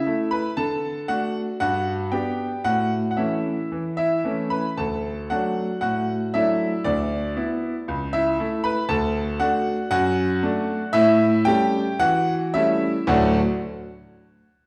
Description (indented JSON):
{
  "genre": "classical-period piano sonatina",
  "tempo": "115 BPM",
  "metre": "4/4",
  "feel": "uneven beats, rubato",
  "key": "D major",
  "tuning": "A4 = 440 Hz",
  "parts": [
    { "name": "bright grand piano", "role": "solo", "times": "0.0-13.4 s", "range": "C#2 to B5", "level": "-23 LUFS", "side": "equal", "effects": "none" }
  ],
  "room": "wet recital hall reverb, RT60 1.4 s",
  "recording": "heard from further back in the room",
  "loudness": "-23 LUFS",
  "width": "mono",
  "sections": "0.0-13.1 A section; 13.1-14.7 B section",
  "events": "none",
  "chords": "0.0 A5; 0.6 D; 1.6 G; 2.6 A; 4.8 D; 6.9 E5/D; 7.9 A/C#; 8.9 D; 9.9 D/F#; 10.9 A7; 13.1 D"
}